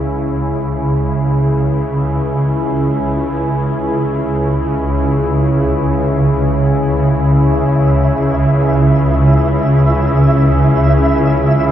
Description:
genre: ambient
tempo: free time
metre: none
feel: none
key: C# minor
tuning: A4 = 440 Hz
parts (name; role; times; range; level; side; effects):
- deep dark ambient pad; sustained chords; 0.0-11.7 s; C#4 to G#4; -18 LUFS; left 1 dB; chorus, built-in reverb
- swarming drone; drone; 0.0-11.7 s; C#2 to C#3; -13 LUFS; equal; built-in reverb
- flickering grainy texture; texture; 7.5-11.7 s; E5; -21 LUFS; right 3 dB; built-in reverb
room: wet cathedral reverb, RT60 6.6 s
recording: dark, warm production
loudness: -12 LUFS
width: side -10 dB against mid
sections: 0.0-11.7 A section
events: fade-in on ambient pad 0.0-11.7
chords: 0.0 C#m

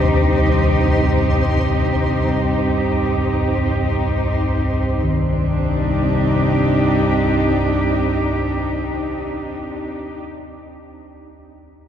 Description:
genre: dark ambient drone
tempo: free time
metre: none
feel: none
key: C minor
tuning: A4 = 440 Hz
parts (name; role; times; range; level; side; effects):
- muted studio cello section; sustained chords; 0.0-10.2 s; C4 to G4; -20 LUFS; equal; none
- gamelan-type bossed gongs; arpeggios; 0.0-9.9 s; D2 to Eb3; -23 LUFS; left 1 dB; diffuse ambient delay
- analog drone; drone; 0.0-9.9 s; C2 to G2; -21 LUFS; equal; wide subtle chorus
- flickering grainy texture; texture; 0.0-5.0 s; C5; -28 LUFS; equal; built-in reverb
room: wet cathedral reverb, RT60 5.4 s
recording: in a vast, echoing space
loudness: -16 LUFS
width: side -9 dB against mid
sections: 0.0-5.0 A section; 5.0-9.5 B section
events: none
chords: 0.0 Cm

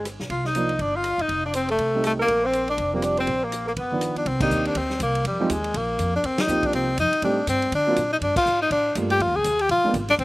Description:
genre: jazz, small-group swing and bop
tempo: 243 BPM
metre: 4/4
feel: swing 60% on 8ths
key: Bb major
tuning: A4 = 441 Hz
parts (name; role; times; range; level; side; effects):
- clear tenor saxophone; melody; 0.0-10.2 s; G3 to Ab4; -22 LUFS; left 1 dB; slapback echo
- mellow alto saxophone; second line; 0.0-4.1 s; A4 to F5; -28 LUFS; right 2 dB; slapback echo
- upright bass; bass; 0.0-10.2 s; E1 to D3; -30 LUFS; equal; none
- vintage drum kit; drums; 0.1-10.2 s; crash cymbal, hi-hat, kick drum, ride cymbal, rim click, snare drum; -33 LUFS; equal; none
- warm grand piano; accompaniment; 0.6-9.9 s; Eb3 to G4; -26 LUFS; right 2 dB; none
room: little or no reverb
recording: recorded outdoors, with no room sound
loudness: -20 LUFS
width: side -20 dB against mid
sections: 0.0-4.3 A section; 4.3-10.2 B section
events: band accent 4.4, 6.4, 8.3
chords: 0.3 Cm11; 1.3 F9; 2.3 Bb69; 3.8 G7b13; 4.3 Cm9; 5.3 Fm9; 5.7 Bb5; 6.2 Eb69; 7.2 Am7b5; 7.7 D7alt; 8.2 Gm9; 9.2 Fm7; 9.7 Bb7b9

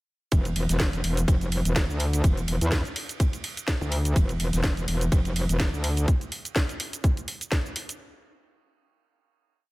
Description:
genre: bass house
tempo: 125 BPM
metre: 4/4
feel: swing 56% on 16ths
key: unclear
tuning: A4 = 440 Hz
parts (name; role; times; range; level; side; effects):
- metallic wobble bass; bass; 0.3-6.1 s; E1 to E2; -25 LUFS; equal; chorus, tube saturation, sidechain pumping
- electronic kick drum; drums; 0.3-7.6 s; none; -24 LUFS; equal; none
- house drum kit; drums; 0.3-8.0 s; hi-hat, shaker, snare drum; -30 LUFS; equal; none
- loose indie drum kit; drums; 0.3-6.1 s; ride cymbal, snare drum; -41 LUFS; right 4 dB; sidechain pumping on cymbals, high-pass filter on cymbals, high-pass filter on snare, high-pass filter on room
room: little or no reverb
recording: none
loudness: -23 LUFS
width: side -21 dB against mid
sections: 0.3-8.0 drop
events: drop 0.3-8.0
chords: none

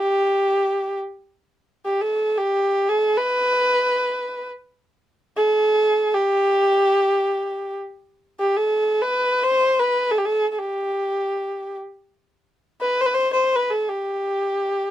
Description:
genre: Persian modal ensemble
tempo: free time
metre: none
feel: none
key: unclear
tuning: A4 = 442 Hz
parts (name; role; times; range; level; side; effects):
- warm kamancheh; solo; 0.0-14.9 s; G4 to C5; -19 LUFS; equal; none
room: little or no reverb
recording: close, detailed microphones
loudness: -19 LUFS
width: side -12 dB against mid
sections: 0.0-8.0 A section; 8.0-14.9 A section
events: none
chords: none

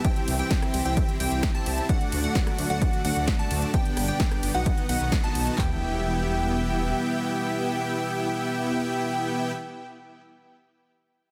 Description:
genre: EDM, festival progressive house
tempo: 130 BPM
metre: 4/4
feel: straight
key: E minor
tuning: A4 = 438 Hz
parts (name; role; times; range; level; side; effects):
- rich chamber string section; sustained chords; 0.0-9.5 s; D3 to G4; -38 LUFS; equal; none
- plucky unison lead; arpeggios; 0.0-9.5 s; F#5 to A5; -35 LUFS; equal; sidechain pumping, delay
- dense compressed supersaw; riff; 0.0-9.5 s; A3 to A5; -31 LUFS; equal; sidechain pumping, delay
- big-room dance drum kit; drums; 0.0-5.7 s; handclaps, kick drum, toms; -27 LUFS; equal; none
- big-room dance drum kit; drums; 0.0-5.6 s; hi-hat, ride cymbal, rim click, snare drum; -35 LUFS; equal; none
- detuned saw bass; bass; 0.3-6.9 s; E1 to D2; -31 LUFS; equal; chorus, tube saturation, sidechain pumping
room: light reverb, digital ambience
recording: dense, heavily limited modern master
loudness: -26 LUFS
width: mono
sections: 0.0-5.6 A section; 5.6-9.3 B section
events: drop 0.0-5.6; band accent 5.1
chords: 0.0 C; 1.9 D; 3.7 G; 4.7 B; 5.6 Em

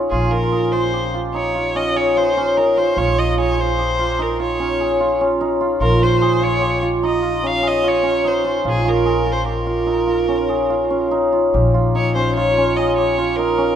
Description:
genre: contemporary instrumental, chamber music in an uneven meter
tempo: 147 BPM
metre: 7/4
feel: straight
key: Bb dorian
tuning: A4 = 440 Hz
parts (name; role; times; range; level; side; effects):
- cimbalom; arpeggios; 0.0-13.8 s; Db4 to Ab4; -17 LUFS; right 1 dB; none
- upright bass; bass; 0.0-13.8 s; Bb1; -23 LUFS; left 2 dB; none
- rich violin; melody; 0.1-13.8 s; Ab4 to F5; -22 LUFS; equal; none
room: moderate scoring stage reverb, RT60 1.6 s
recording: none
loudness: -15 LUFS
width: side -9 dB against mid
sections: 0.0-11.5 A section; 11.5-13.8 B section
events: none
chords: 0.0 Bbm7; 11.5 Bbm

